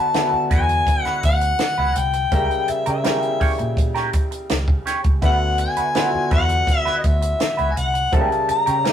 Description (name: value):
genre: lush 1970s-style soul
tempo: 83 BPM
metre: 4/4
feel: straight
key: unclear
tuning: A4 = 440 Hz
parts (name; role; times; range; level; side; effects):
- mellow harmonica; melody; 0.0-8.9 s; D#5 to Bb5; -21 LUFS; left 2 dB; none
- clear grand piano; accompaniment; 0.0-8.9 s; Bb2 to G5; -26 LUFS; equal; none
- clean electric guitar; riff; 0.0-8.9 s; C#4 to C#5; -26 LUFS; right 4 dB; wah
- compact cocktail drum kit; drums; 0.1-8.9 s; hi-hat, kick drum, snare drum; -21 LUFS; equal; none
- vintage muted fingered electric bass; bass; 0.3-8.9 s; B#1 to C#3; -24 LUFS; equal; none
room: moderate studio reverb, RT60 0.6 s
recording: rough rehearsal-room recording, warm saturation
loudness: -17 LUFS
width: side -9 dB against mid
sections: 0.0-8.9 A section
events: none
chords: 0.0 D69; 2.3 C#dim7; 5.2 D69; 8.1 A7b9/C#